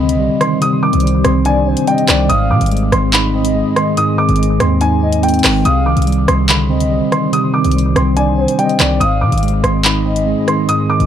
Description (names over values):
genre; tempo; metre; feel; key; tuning
hip hop, drill; 143 BPM; 4/4; half-time; C harmonic minor; A4 = 441 Hz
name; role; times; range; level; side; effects
dark grand piano; melody; 0.0-11.1 s; G5 to Eb6; -19 LUFS; right 1 dB; ping-pong delay
gliding portamento lead; second line; 0.0-10.6 s; C5 to F5; -23 LUFS; left 3 dB; chorus, ping-pong delay
mellow tine electric piano; accompaniment; 0.0-11.1 s; Ab2 to Eb4; -16 LUFS; right 1 dB; medium stereo tremolo
deep dark ambient pad; sustained chords; 0.0-11.1 s; G3 to Eb5; -22 LUFS; left 1 dB; chorus, built-in reverb
hard-hitting 808-style bass; bass; 0.0-11.1 s; Ab1 to C3; -16 LUFS; equal; none
drill drum kit; drums; 0.1-11.1 s; handclaps, hi-hat, rim click; -17 LUFS; equal; none
room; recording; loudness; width
little or no reverb; dark, warm production; -11 LUFS; side -9 dB against mid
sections
0.0-11.1 A section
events
none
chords
0.0 Cmadd9; 2.3 Ab; 5.7 Cmadd9; 9.0 Ab